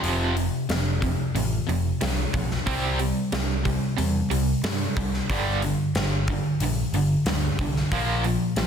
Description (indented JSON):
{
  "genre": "hard rock",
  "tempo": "92 BPM",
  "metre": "4/4",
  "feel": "straight",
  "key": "G minor",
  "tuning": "A4 = 440 Hz",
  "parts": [
    { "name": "cranked stack guitar", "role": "riff", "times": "0.0-8.7 s", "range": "F2 to C4", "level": "-28 LUFS", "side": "right 9 dB", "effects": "overdrive, tremolo" },
    { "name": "sludgy distorted guitar", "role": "riff", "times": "0.0-8.7 s", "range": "F2 to C4", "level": "-28 LUFS", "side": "left 8 dB", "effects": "overdrive" },
    { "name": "overdriven picked electric bass", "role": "bass", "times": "0.0-8.7 s", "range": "F1 to G2", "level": "-27 LUFS", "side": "equal", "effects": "none" },
    { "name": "big rock drum kit", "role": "drums", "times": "0.0-8.7 s", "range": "hi-hat, kick drum, snare drum", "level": "-29 LUFS", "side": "equal", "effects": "soft clipping on kick" }
  ],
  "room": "moderate large studio reverb, RT60 0.9 s, small room reverb",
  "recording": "dense, heavily limited modern master",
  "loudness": "-22 LUFS",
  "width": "side -7 dB against mid",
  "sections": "0.0-8.7 A section",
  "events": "none",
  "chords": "0.0 F5; 2.7 C5; 5.3 G5; 7.9 Bb5"
}